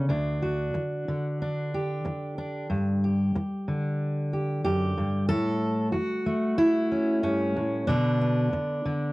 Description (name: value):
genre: folk, solo fingerstyle acoustic guitar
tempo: 92 BPM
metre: 4/4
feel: straight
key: D major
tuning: A4 = 441 Hz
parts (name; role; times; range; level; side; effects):
- fingerpicked steel-string acoustic guitar; solo; 0.0-9.1 s; D2 to A4; -24 LUFS; equal; none
room: moderate studio reverb, RT60 0.6 s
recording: worn, warbling old tape, cassette tape, warbly pitch drift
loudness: -24 LUFS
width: side -20 dB against mid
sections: 0.0-9.1 A section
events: none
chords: 0.1 D; 2.7 G5; 5.3 A; 7.9 Bm